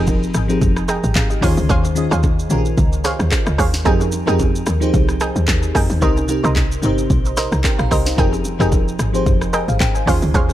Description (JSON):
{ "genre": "amapiano", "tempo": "111 BPM", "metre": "4/4", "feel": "swing 55% on 16ths", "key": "F minor", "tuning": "A4 = 440 Hz", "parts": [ { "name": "crystalline FM electric piano", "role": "accompaniment", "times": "0.0-10.5 s", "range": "C3 to Bb5", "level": "-20 LUFS", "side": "equal", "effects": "chorus, phaser" }, { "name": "analog pluck", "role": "stabs", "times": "0.0-10.5 s", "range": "Ab4 to G5", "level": "-24 LUFS", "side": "right 2 dB", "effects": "chorus, ping-pong delay" }, { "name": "woody log drum bass", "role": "bass", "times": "0.0-10.5 s", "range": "F1 to F2", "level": "-19 LUFS", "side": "equal", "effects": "none" }, { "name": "afro-pop drum kit", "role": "drums", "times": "0.1-10.5 s", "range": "handclaps, hi-hat, kick drum, rim click, shaker, snare drum", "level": "-19 LUFS", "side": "equal", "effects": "none" }, { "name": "bongos and congas", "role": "percussion", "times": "0.1-10.5 s", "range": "none", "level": "-26 LUFS", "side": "right 1 dB", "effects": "none" } ], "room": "digital ambience", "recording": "dark, warm production", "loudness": "-14 LUFS", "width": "side -13 dB against mid", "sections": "0.0-10.5 A section", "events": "none", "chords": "0.0 Fm11; 1.4 Eb13sus4; 3.9 Fm11; 6.0 Cm7; 8.2 Fm11" }